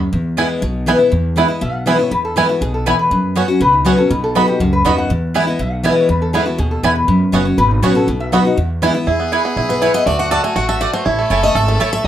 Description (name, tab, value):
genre	bluegrass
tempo	242 BPM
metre	4/4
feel	straight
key	E major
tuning	A4 = 440 Hz
part	picked steel-string acoustic guitar	accompaniment	0.0-12.1 s	E2 to A5	-16 LUFS	left 2 dB	none
part	upright bass	bass	0.0-12.1 s	F#1 to F#2	-20 LUFS	equal	none
part	bluegrass banjo	arpeggios	0.4-12.1 s	A3 to A4	-19 LUFS	right 3 dB	none
part	mandolin	stabs	0.4-11.9 s	A3 to B5	-20 LUFS	right 5 dB	none
part	lap resonator guitar	melody	1.5-8.7 s	D#4 to F#5	-19 LUFS	left 2 dB	plate reverb
part	clear fiddle	second line	9.1-12.1 s	F#4 to A4	-24 LUFS	left 2 dB	none
room	moderate studio ambience, RT60 0.4 s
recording	none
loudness	-13 LUFS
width	side -11 dB against mid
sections	0.0-1.1 A section; 1.1-9.1 B section; 9.1-12.1 C section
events	steel-string acoustic guitar solo 9.1-12.1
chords	0.1 E; 3.1 F#sus4; 4.1 B; 5.1 E; 7.1 F#sus4; 8.1 B; 8.6 E; 10.1 D; 11.1 A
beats	| 0.13 0.38 0.62 0.87 | 1.12 1.37 1.62 1.87 | 2.12 2.37 2.61 2.86 | 3.11 3.36 3.61 3.86 | 4.10 4.35 4.60 4.85 | 5.10 5.35 5.59 5.84 | 6.09 6.34 6.59 6.84 | 7.08 7.33 7.58 7.83 | 8.08 8.33 8.57 8.82 | 9.07 9.32 9.57 9.82 | 10.06 10.31 10.56 10.81 | 11.06 11.31 11.55 11.80 | 12.05